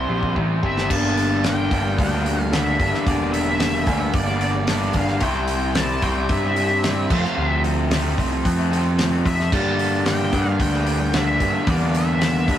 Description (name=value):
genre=classic rock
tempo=112 BPM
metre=4/4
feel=straight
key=G dorian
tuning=A4 = 439 Hz
part: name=octave-fuzz lead guitar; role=melody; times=0.0-12.6 s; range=C5 to A5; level=-26 LUFS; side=left 1 dB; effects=wah, distortion
part: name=distorted electric guitar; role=riff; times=0.0-12.6 s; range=F2 to E4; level=-26 LUFS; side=left 5 dB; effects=distortion
part: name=distorted electric guitar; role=riff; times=0.0-12.6 s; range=F2 to E4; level=-24 LUFS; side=right 3 dB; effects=distortion
part: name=growling picked electric bass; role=bass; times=0.0-12.6 s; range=E1 to G2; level=-23 LUFS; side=equal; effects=overdrive
part: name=damped 70s drum kit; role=drums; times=0.2-12.6 s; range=crash cymbal, hi-hat, kick drum, snare drum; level=-25 LUFS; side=equal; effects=none
room=moderate small room reverb, RT60 0.5 s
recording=rough rehearsal-room recording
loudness=-18 LUFS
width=side -11 dB against mid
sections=0.9-12.6 A section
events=drum fill 0.0-0.9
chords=0.0 C; 0.9 Gm; 5.2 C; 7.1 F; 9.5 Gm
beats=0.36 | 0.90 1.44 1.98 2.52 | 3.06 3.60 4.14 4.68 | 5.22 5.76 6.29 6.83 | 7.37 7.91 8.45 8.98 | 9.52 10.06 10.60 11.14 | 11.67 12.21